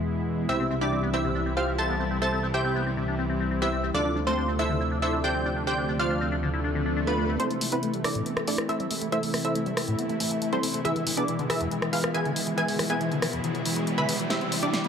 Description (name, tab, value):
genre	uplifting trance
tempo	139 BPM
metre	4/4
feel	straight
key	A minor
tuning	A4 = 438 Hz
part	fat analog bass	bass	0.0-7.4 s	C2 to E2	-31 LUFS	equal	none
part	lush unison pad	sustained chords	0.1-14.9 s	B2 to E4	-30 LUFS	equal	chorus
part	wide unison pluck	melody	0.5-14.8 s	B3 to B5	-29 LUFS	right 1 dB	ping-pong delay
part	plucky unison lead	second line	0.5-14.8 s	B5 to B6	-34 LUFS	equal	ping-pong delay
part	liquid acid bass	arpeggios	0.5-14.9 s	E2 to G4	-32 LUFS	left 3 dB	phaser, wide subtle chorus, ping-pong delay
part	swell and riser	sound effects	6.7-14.9 s	none	-37 LUFS	equal	none
part	punchy analog drum machine	drums	7.4-14.9 s	hi-hat, rim click, snare drum	-30 LUFS	equal	low-pass filter on cymbals, low-pass filter on hats, low-pass filter on snare
room	light reverb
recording	none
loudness	-24 LUFS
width	side -7 dB against mid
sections	0.0-7.4 A section; 7.4-14.9 B section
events	swell 6.7-7.4; build-up 7.4-14.9; filter sweep on synth pluck 7.4-14.9; filter sweep on digital synth lead 7.4-14.9; riser 10.2-14.9; drum fill 14.3-14.9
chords	0.5 C; 3.9 Dm7; 7.4 Am; 10.9 E; 14.3 C